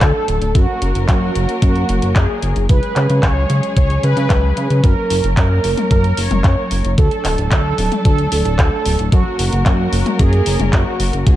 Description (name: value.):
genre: italo disco.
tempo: 112 BPM.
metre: 4/4.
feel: straight.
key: F# major.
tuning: A4 = 437 Hz.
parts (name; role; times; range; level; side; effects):
mellow synth brass; melody; 0.0-11.4 s; F#4 to C#5; -21 LUFS; right 2 dB; chorus, ping-pong delay.
rich studio string section; sustained chords; 0.0-11.4 s; F#3 to A#4; -24 LUFS; equal; none.
chorused synth bass; bass; 0.0-11.4 s; D1 to C#3; -17 LUFS; equal; none.
electronic kick drum; drums; 0.0-11.4 s; none; -14 LUFS; equal; small room ambience.
house drum kit; drums; 0.0-11.4 s; handclaps, hi-hat, toms; -23 LUFS; left 2 dB; small room ambience.
room: light reverb.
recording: dark, warm production.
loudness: -13 LUFS.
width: side -14 dB against mid.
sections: 0.0-11.4 A section.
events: none.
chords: 0.0 D; 0.6 F#; 2.7 C#sus4; 4.8 F#; 7.0 D; 9.1 F#.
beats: 0.01 | 0.55 1.09 1.62 2.16 | 2.69 3.23 3.77 4.30 | 4.84 5.37 5.91 6.44 | 6.98 7.51 8.05 8.59 | 9.12 9.66 10.19 10.73 | 11.27.